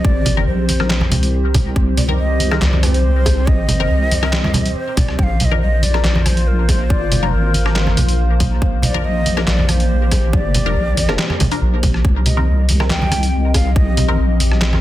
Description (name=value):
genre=deep dubstep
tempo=140 BPM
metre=4/4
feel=half-time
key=C minor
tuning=A4 = 441 Hz
part: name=breathy bright ney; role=melody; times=0.0-14.4 s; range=Bb4 to G5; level=-25 LUFS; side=equal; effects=dub echo
part: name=dark analog pad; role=sustained chords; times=0.0-14.8 s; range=Bb3 to Eb5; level=-25 LUFS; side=equal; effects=chorus, phaser
part: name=deep soft wobble bass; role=bass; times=0.0-14.8 s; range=Ab1 to C2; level=-16 LUFS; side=equal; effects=chorus
part: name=electronic kick drum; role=drums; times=0.0-13.8 s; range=none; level=-17 LUFS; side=equal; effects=none
part: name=trip hop sampler-style drum kit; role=drums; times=0.3-14.8 s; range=handclaps, hi-hat, rim click, snare drum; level=-21 LUFS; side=equal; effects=none
part: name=congas and bongos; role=percussion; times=0.3-14.8 s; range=none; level=-22 LUFS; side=right 2 dB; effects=none
part: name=filtered dub chord stab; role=stabs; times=0.4-14.2 s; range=Eb3 to Bb4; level=-25 LUFS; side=left 3 dB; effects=phaser, dub echo
room=digital ambience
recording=dense, heavily limited modern master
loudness=-13 LUFS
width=side -14 dB against mid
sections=0.0-14.8 A section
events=none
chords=0.0 Cm7; 5.2 Bb; 12.0 Cm7